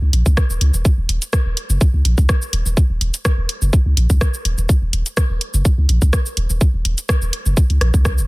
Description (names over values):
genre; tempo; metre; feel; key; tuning
minimal techno; 125 BPM; 4/4; swing 53% on 16ths; Eb minor; A4 = 440 Hz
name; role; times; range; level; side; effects
punchy sub bass; bass; 0.0-8.3 s; Eb1 to Db2; -16 LUFS; equal; sidechain pumping
garage drum kit; drums; 0.1-8.3 s; hi-hat, rim click, shaker; -23 LUFS; equal; soft clipping on snare
electronic kick drum; drums; 0.3-8.2 s; none; -14 LUFS; equal; none
room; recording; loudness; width
little or no reverb; dense, heavily limited modern master; -14 LUFS; side -23 dB against mid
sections
0.0-8.3 A section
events
none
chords
none